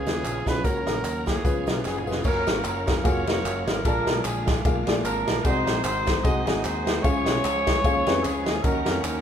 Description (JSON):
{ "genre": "uptempo gospel", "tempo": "150 BPM", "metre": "4/4", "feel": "swing 56% on 8ths", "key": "F# major", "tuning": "A4 = 440 Hz", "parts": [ { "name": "warm trumpet", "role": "melody", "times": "0.0-2.1 s", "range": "F#4 to B4", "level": "-31 LUFS", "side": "right 1 dB", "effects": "none" }, { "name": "clear concert grand piano", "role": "accompaniment", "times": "0.0-9.2 s", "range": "A#2 to E#5", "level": "-29 LUFS", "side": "left 2 dB", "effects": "none" }, { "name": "bright tonewheel organ", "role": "sustained chords", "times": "0.0-9.2 s", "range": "D3 to A#4", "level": "-34 LUFS", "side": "right 3 dB", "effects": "slow rotary speaker, chorus vibrato" }, { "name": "mellow French horn section", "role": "sustained chords", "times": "0.0-2.2 s", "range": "F#3 to F#4", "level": "-36 LUFS", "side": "right 3 dB", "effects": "none" }, { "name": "fingered electric bass", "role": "bass", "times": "0.0-9.2 s", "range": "E#1 to E#2", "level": "-32 LUFS", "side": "equal", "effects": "none" }, { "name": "swinging big-band drum kit", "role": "drums", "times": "0.1-9.1 s", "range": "crash cymbal, hi-hat, kick drum, ride cymbal, snare drum, toms", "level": "-25 LUFS", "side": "equal", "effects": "none" }, { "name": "tambourine and handclaps", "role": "percussion", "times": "0.1-9.2 s", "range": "none", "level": "-38 LUFS", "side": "right 2 dB", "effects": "none" }, { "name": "warm horn section", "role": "melody", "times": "1.9-9.2 s", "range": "B3 to D#5", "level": "-27 LUFS", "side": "equal", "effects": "none" } ], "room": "moderate large studio reverb, RT60 1.0 s", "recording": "band playing live in one room", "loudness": "-21 LUFS", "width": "side -8 dB against mid", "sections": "0.0-2.2 A section; 2.2-9.2 B section", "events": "drum fill 1.8-2.2", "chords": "0.0 C#7; 0.6 F#; 1.4 C#7; 2.2 F#maj7; 3.8 A#7; 5.4 G#7; 7.0 C#; 8.6 D#m7", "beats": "0.24 | 0.65 1.05 1.45 1.85 | 2.25 2.65 3.05 3.45 | 3.85 4.25 4.65 5.05 | 5.45 5.85 6.25 6.65 | 7.05 7.45 7.85 8.25 | 8.65 9.04" }